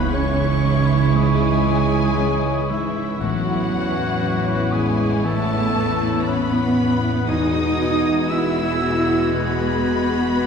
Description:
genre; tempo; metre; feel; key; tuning
cinematic; 58 BPM; 4/4; rubato; unclear; A4 = 440 Hz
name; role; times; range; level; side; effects
warm studio violin section; melody; 0.0-10.5 s; E5 to E6; -29 LUFS; left 5 dB; none
rich studio violin section; second line; 0.0-10.5 s; B3 to F#4; -31 LUFS; left 2 dB; none
silver concert flute; second line; 0.0-10.5 s; C#6 to G#6; -31 LUFS; right 1 dB; none
warm clarinet; second line; 0.0-10.5 s; E4 to F#4; -31 LUFS; left 1 dB; none
warm oboe; second line; 0.0-10.5 s; E4 to E5; -29 LUFS; right 2 dB; none
dark concert grand piano; accompaniment; 0.0-10.5 s; A1 to F#4; -26 LUFS; left 2 dB; none
warm studio viola section; accompaniment; 0.0-10.5 s; E3 to B3; -27 LUFS; right 1 dB; none
mellow French horn section; sustained chords; 0.0-10.5 s; E3 to E4; -25 LUFS; left 2 dB; none
concert harp; arpeggios; 0.0-10.5 s; E2 to C#5; -29 LUFS; left 1 dB; none
dark studio double bass section; bass; 0.0-10.5 s; E1 to C#2; -24 LUFS; right 5 dB; none
rich studio cello section; bass; 0.0-10.5 s; E3 to E4; -27 LUFS; right 3 dB; none
room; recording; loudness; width
wet scoring stage reverb, RT60 1.8 s; heard from further back in the room; -17 LUFS; side -6 dB against mid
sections
0.0-10.5 A section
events
none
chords
0.0 C#m; 3.2 Aadd9; 7.3 Eadd9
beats
0.12 1.15 2.18 | 3.20 4.21 5.24 6.26 | 7.28 8.30 9.33 10.37

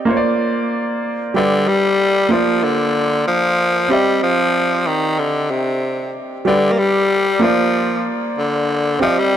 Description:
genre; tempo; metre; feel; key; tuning
afrobeats; 94 BPM; 4/4; straight; unclear; A4 = 440 Hz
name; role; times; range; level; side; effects
warm grand piano; accompaniment; 0.0-9.4 s; G3 to Eb5; -18 LUFS; right 2 dB; none
raspy tenor saxophone; melody; 1.4-9.4 s; C3 to Bb3; -16 LUFS; left 2 dB; digital delay
room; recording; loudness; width
moderate plate reverb, RT60 2.8 s; dark, warm production; -14 LUFS; side -10 dB against mid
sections
0.0-1.4 A section; 1.4-9.4 B section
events
none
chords
0.1 Bbadd9; 1.4 G; 2.3 Bbadd9; 3.9 Cmadd9; 6.5 G; 7.4 Bbadd9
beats
0.08 0.72 | 1.35 1.99 2.63 3.27 | 3.91 4.55 5.18 5.82 | 6.46 7.10 7.74 8.38 | 9.01

